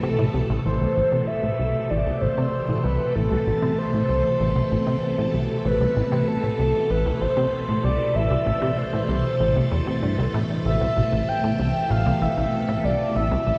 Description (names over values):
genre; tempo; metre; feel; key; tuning
ambient, sequencer-driven space music; 96 BPM; 4/4; straight; A minor; A4 = 440 Hz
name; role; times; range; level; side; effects
breathy flute-like synth lead; melody; 0.0-13.6 s; A4 to G5; -27 LUFS; equal; analog chorus, tape echo
phased string machine; sustained chords; 0.0-13.6 s; B2 to A4; -28 LUFS; equal; ensemble chorus, phaser
plucky analog bass; riff; 0.0-13.5 s; A1 to C3; -27 LUFS; equal; analog chorus, tape echo
pulsing gated texture; texture; 0.0-0.7 s; A4; -44 LUFS; equal; none
room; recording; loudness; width
wet cathedral reverb, RT60 5.5 s; in a vast, echoing space; -23 LUFS; mono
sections
0.7-13.6 A section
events
none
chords
0.0 Amadd9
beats
0.03 | 0.65 1.28 1.90 2.53 | 3.15 3.78 4.40 5.03 | 5.65 6.28 6.90 7.53 | 8.15 8.78 9.40 10.03 | 10.65 11.28 11.90 12.53 | 13.15